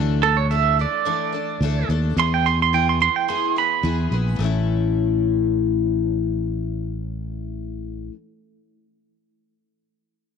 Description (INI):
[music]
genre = folk rock and heartland rock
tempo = 108 BPM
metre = 4/4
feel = straight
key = A major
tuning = A4 = 440 Hz
[part]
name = picked twelve-string acoustic guitar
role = accompaniment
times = 0.0-8.2 s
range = A2 to A4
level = -25 LUFS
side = left 13 dB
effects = none
[part]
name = fingered electric bass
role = bass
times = 0.0-8.1 s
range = A1 to E2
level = -22 LUFS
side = equal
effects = none
[part]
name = pedal steel guitar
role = melody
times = 0.2-4.4 s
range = A4 to C6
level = -20 LUFS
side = right 12 dB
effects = none
[sound]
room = light reverb, studio ambience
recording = 1960s-style stereo with parts hard left and right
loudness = -18 LUFS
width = side -6 dB against mid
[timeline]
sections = 0.0-4.4 A section; 4.4-6.6 B section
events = pedal steel guitar solo 0.0-4.4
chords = 0.0 Dsus2; 2.2 E; 4.4 A